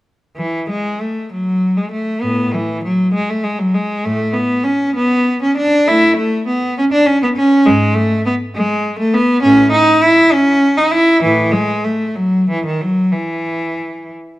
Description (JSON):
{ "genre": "classical, baroque-style suite movement for unaccompanied cello", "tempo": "60-69 BPM (dotted quarters)", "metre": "6/8", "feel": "rubato", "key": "A major, E major from 7.7 s", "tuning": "A4 = 441 Hz", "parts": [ { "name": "rich cello", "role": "solo", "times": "0.4-14.1 s", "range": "G#2 to E4", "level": "-12 LUFS", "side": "equal", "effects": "none" } ], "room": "wet stone room reverb, RT60 1.2 s", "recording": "none", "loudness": "-12 LUFS", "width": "side -16 dB against mid", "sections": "0.4-14.4 A section", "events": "none", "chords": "none" }